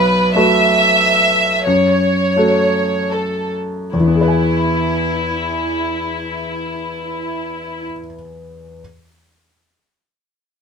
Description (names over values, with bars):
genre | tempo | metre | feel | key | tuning
neoclassical piano and strings | 72-93 BPM | 3/4 | rubato | E major | A4 = 440 Hz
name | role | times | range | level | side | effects
warm chamber violin section | melody | 0.0-7.9 s | E4 to E5 | -16 LUFS | equal | none
felt-muted upright piano | accompaniment | 0.0-8.8 s | B1 to G#5 | -18 LUFS | left 1 dB | none
room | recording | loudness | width
light reverb | minimal, uncompressed stereo recording | -14 LUFS | side -6 dB against mid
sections
0.0-3.9 A section; 3.9-8.8 B section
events
slowing down 0.0-3.9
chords
0.0 B7sus4; 1.7 F#m; 3.9 E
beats
0.35 1.00 | 1.66 2.36 3.12 | 3.93 4.74 5.55 | 6.36 7.17 7.98